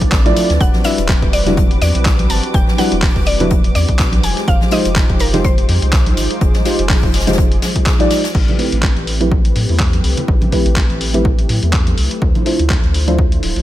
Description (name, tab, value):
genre	deep house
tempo	124 BPM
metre	4/4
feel	swing 56% on 16ths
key	A minor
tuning	A4 = 441 Hz
part	mallet-like synth pluck	melody	0.0-7.8 s	Bb4 to A5	-23 LUFS	left 1 dB	chorus, cassette tape, dub echo
part	warm analog pad	sustained chords	0.0-13.6 s	G3 to C5	-24 LUFS	left 1 dB	chorus, sidechain pumping
part	round analog bass	bass	0.0-13.6 s	D1 to A2	-18 LUFS	equal	sidechain pumping
part	dusty soul sampler-style drum kit	drums	0.0-13.6 s	crash cymbal, handclaps, hi-hat	-22 LUFS	left 1 dB	none
part	electronic kick drum	drums	0.0-13.3 s	none	-15 LUFS	equal	none
part	soft string machine	texture	0.0-8.4 s	D5 to D6	-31 LUFS	equal	ensemble chorus, sidechain pumping
part	swinging big-band drum kit	drums	0.1-8.3 s	hi-hat, snare drum	-29 LUFS	left 2 dB	sidechain pumping on hats, high-pass filter on hats, high-pass filter on snare, high-pass filter on room
part	deep mellow chord stab	stabs	0.3-13.2 s	G3 to D5	-20 LUFS	equal	chorus, sidechain pumping, tape echo
part	congas	percussion	0.3-13.5 s	none	-24 LUFS	right 1 dB	none
room	digital ambience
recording	none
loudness	-12 LUFS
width	side -14 dB against mid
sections	0.0-8.3 A section; 8.3-13.6 B section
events	drop 0.0-8.3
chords	0.0 Dm9; 0.6 Em9; 4.2 Fm9; 8.3 Am9; 12.2 Dm9